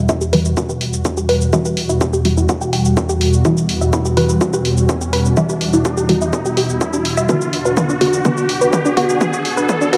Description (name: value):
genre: melodic techno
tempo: 125 BPM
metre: 4/4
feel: straight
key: E minor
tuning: A4 = 439 Hz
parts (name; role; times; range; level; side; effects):
- warm analog pad; sustained chords; 0.0-10.0 s; E2 to F#4; -20 LUFS; equal; chorus, sidechain pumping
- analog pluck; arpeggios; 0.0-10.0 s; B3 to G5; -22 LUFS; equal; chorus, phaser, cassette tape, sidechain pumping, delay
- filtered dub chord stab; stabs; 0.0-10.0 s; D3 to F#4; -23 LUFS; equal; phaser, subtle chorus, sidechain pumping, delay
- riser; sound effects; 0.0-10.0 s; none; -29 LUFS; equal; none
- electronic kick drum; drums; 0.1-9.8 s; none; -25 LUFS; equal; distortion, high-pass filter on kick, high-pass filter on room
- techno drum kit; drums; 0.1-10.0 s; hi-hat, shaker, toms; -26 LUFS; equal; sidechain pumping on perc, sidechain pumping on hats, sidechain pumping on toms
room: wet plate reverb, RT60 2.0 s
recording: dreamy mix soaked in reverb, high-pass filter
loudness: -16 LUFS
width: mono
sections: 0.0-10.0 A section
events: build-up 0.0-10.0; riser 0.0-10.0; filter sweep on synth arpeggio sound 0.0-10.0; filter sweep on synth stab 0.0-10.0; drum fill 7.3-10.0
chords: 0.0 Emadd9; 7.3 Bm/E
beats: 0.09 0.57 1.05 | 1.53 2.01 2.49 2.97 | 3.45 3.93 4.41 4.89 | 5.37 5.85 6.33 6.81 | 7.29 7.77 8.25 8.73 | 9.21 9.69